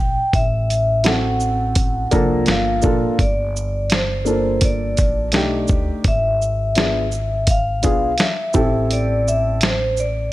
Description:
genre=hip hop, jazz-hop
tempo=84 BPM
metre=4/4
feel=swing 60% on 16ths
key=G dorian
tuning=A4 = 439 Hz
part: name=vibraphone with soft mallets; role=melody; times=0.0-10.3 s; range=C5 to G5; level=-22 LUFS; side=equal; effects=none
part: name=upright bass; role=bass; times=0.0-10.3 s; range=G1 to D2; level=-23 LUFS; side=equal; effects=none
part: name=dusty soul sampler-style drum kit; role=drums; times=0.3-10.2 s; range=hi-hat, kick drum, shaker, snare drum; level=-19 LUFS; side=equal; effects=none
part: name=dark upright piano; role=accompaniment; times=1.0-9.7 s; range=F3 to A4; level=-21 LUFS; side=equal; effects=none
room=light reverb, small room ambience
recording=none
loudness=-16 LUFS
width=side -16 dB against mid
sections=0.0-3.2 A section; 3.2-10.3 A section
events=none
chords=0.3 D7/A; 2.5 Gm9; 5.3 B7alt; 6.0 E7b9/G#; 8.5 Am7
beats=| 0.33 1.04 1.76 2.47 | 3.19 3.90 4.62 5.33 | 6.04 6.76 7.47 8.19 | 8.90 9.62

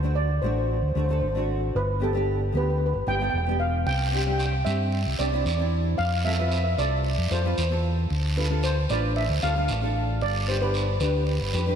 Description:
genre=calypso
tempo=113 BPM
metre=4/4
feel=straight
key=unclear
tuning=A4 = 440 Hz
part: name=steel pan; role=melody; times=0.0-11.7 s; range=A4 to G5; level=-28 LUFS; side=right 1 dB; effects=none
part: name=nylon-string guitar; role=accompaniment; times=0.0-11.8 s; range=A3 to D5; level=-30 LUFS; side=equal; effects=double-tracked left and right
part: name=fingered electric bass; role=bass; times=0.0-11.8 s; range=E1 to G2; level=-25 LUFS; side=equal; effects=none
part: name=guiro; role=percussion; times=3.9-11.7 s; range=none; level=-34 LUFS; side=right 4 dB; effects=none
room=moderate lush hall reverb, RT60 2.9 s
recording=dreamy mix soaked in reverb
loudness=-22 LUFS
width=side -8 dB against mid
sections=0.0-11.8 A section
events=none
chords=0.0 D7; 1.8 G; 3.9 Csus2; 6.0 F; 8.1 Dm; 10.2 G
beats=0.16 0.69 1.22 | 1.75 2.28 2.81 3.34 | 3.87 4.40 4.93 5.46 | 5.99 6.52 7.05 7.58 | 8.10 8.63 9.16 9.69 | 10.22 10.74 11.27

